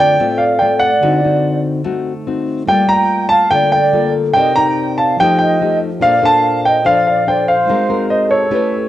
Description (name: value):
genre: bossa nova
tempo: 144 BPM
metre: 4/4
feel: straight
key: Bb major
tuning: A4 = 440 Hz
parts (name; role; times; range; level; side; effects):
- warm grand piano; melody; 0.0-8.9 s; Db5 to Bb5; -13 LUFS; equal; plate reverb
- mellow flute section; second line; 0.0-8.9 s; A4 to G5; -18 LUFS; right 3 dB; cassette tape, plate reverb
- bell-like tine electric piano; accompaniment; 0.0-8.9 s; Bb2 to D5; -24 LUFS; right 5 dB; cassette tape
- nylon-string guitar; accompaniment; 0.0-8.9 s; A2 to D5; -18 LUFS; left 5 dB; cassette tape, plate reverb
room: wet studio reverb, RT60 0.6 s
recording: home recording on cassette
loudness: -11 LUFS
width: side -13 dB against mid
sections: 0.0-8.9 A section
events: tine electric piano fill 8.7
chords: 0.0 Dm7; 1.0 D7b9; 2.7 Gm9; 4.4 Cm9; 5.2 F9; 6.0 Bbmaj9; 7.7 Ab9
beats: 0.20 0.61 | 1.03 1.45 1.86 2.28 | 2.69 3.11 3.52 3.94 | 4.36 4.77 5.19 5.61 | 6.02 6.44 6.86 7.27 | 7.69 8.11 8.52